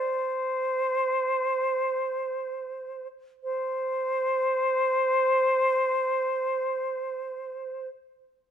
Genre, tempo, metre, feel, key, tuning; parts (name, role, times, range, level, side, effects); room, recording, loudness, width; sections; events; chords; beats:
classical, baroque-style fantasia for unaccompanied flute; free time; A4 = 440 Hz
silver concert flute; solo; 0.0-7.9 s; C5; -25 LUFS; equal
moderate stone room reverb, RT60 1.4 s; -25 LUFS; side -8 dB against mid
0.0-3.4 A section; 3.4-7.1 B section
slowing down 0.0-3.4
free time